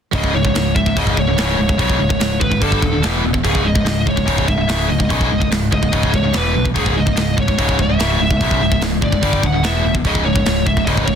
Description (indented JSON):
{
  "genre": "heavy metal",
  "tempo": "145 BPM",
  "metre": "4/4",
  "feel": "straight",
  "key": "C# minor",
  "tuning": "A4 = 439 Hz",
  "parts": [
    { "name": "tight distorted guitar", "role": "riff", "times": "0.1-11.2 s", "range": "C#2 to G3", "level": "-21 LUFS", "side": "left 14 dB", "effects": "distortion" },
    { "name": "tight distorted guitar", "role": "riff", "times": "0.1-11.2 s", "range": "C#2 to G3", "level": "-21 LUFS", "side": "right 12 dB", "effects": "distortion" },
    { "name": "growling picked electric bass", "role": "bass", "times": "0.1-11.2 s", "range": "C#1 to B1", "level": "-20 LUFS", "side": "equal", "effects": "overdrive" },
    { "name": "tight metal drum kit", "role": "drums", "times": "0.1-11.2 s", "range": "hi-hat, kick drum, snare drum", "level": "-20 LUFS", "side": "equal", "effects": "none" },
    { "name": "high-gain lead guitar", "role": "melody", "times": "0.2-11.2 s", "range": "G#4 to F#5", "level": "-22 LUFS", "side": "equal", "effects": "distortion" }
  ],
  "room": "studio reverb",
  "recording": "dense, heavily limited modern master",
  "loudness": "-14 LUFS",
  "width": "side -8 dB against mid",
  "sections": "0.1-11.2 A section",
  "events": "none",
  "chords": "0.1 C#5; 2.6 G5; 3.0 E5; 3.5 C#5; 6.3 E5; 6.8 C#m; 9.2 G5; 9.6 E5; 10.1 C#5"
}